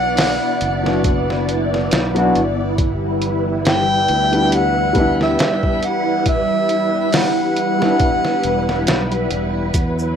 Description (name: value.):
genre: trip hop.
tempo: 69 BPM.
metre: 4/4.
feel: swing 56% on 16ths.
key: unclear.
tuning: A4 = 436 Hz.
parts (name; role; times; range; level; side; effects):
mellow harmonica; melody; 0.0-9.3 s; E5 to G5; -20 LUFS; equal; vintage 12-bit sampler grit, tape echo.
felt-muted upright piano; accompaniment; 0.0-9.1 s; F#3 to F#4; -22 LUFS; left 2 dB; tremolo, vintage 12-bit sampler grit, tape echo.
string machine, cellos; sustained chords; 0.0-10.2 s; F#3 to D5; -20 LUFS; equal; phaser, ensemble chorus.
fingered electric bass; bass; 0.0-10.2 s; E1 to E2; -23 LUFS; equal; tube saturation.
trip hop sampler-style drum kit; drums; 0.2-10.0 s; hi-hat, kick drum, snare drum; -20 LUFS; equal; none.
maracas; percussion; 9.7-10.1 s; none; -34 LUFS; equal; none.
room: light reverb.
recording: rough home demo mix.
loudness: -15 LUFS.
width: side -8 dB against mid.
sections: 0.0-10.2 A section.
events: none.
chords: 0.0 Bm; 2.8 G6.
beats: 0.18 1.05 1.92 | 2.79 3.66 4.53 5.40 | 6.27 7.14 8.01 8.88 | 9.74.